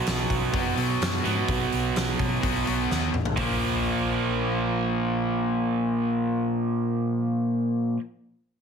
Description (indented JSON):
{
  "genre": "hard rock",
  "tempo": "126 BPM",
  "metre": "4/4",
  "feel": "straight",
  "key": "unclear",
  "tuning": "A4 = 441 Hz",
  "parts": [
    { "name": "cranked stack guitar", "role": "riff", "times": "0.0-8.0 s", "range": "Bb2 to B3", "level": "-28 LUFS", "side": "left 8 dB", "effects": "overdrive" },
    { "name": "cranked stack guitar", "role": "riff", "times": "0.0-8.0 s", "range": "Bb2 to B3", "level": "-27 LUFS", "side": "right 8 dB", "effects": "overdrive" },
    { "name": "hollow-body short-scale picked electric bass", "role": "bass", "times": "0.1-7.9 s", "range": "F#1 to B2", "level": "-31 LUFS", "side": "left 1 dB", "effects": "none" },
    { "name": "huge arena drum kit", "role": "drums", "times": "0.1-3.5 s", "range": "hi-hat, kick drum, snare drum, toms", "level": "-29 LUFS", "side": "equal", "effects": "none" }
  ],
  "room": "moderate studio reverb, RT60 0.7 s",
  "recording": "heavily compressed radio sound",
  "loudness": "-23 LUFS",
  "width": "side -6 dB against mid",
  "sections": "0.0-3.4 A section; 3.4-7.2 B section",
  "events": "drum fill 2.9-3.4",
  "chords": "0.0 B5; 3.4 Bb5",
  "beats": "0.05 0.53 1.00 | 1.48 1.95 2.42 2.90 | 3.38 3.85 4.33 4.80 | 5.28 5.75 6.23 6.70"
}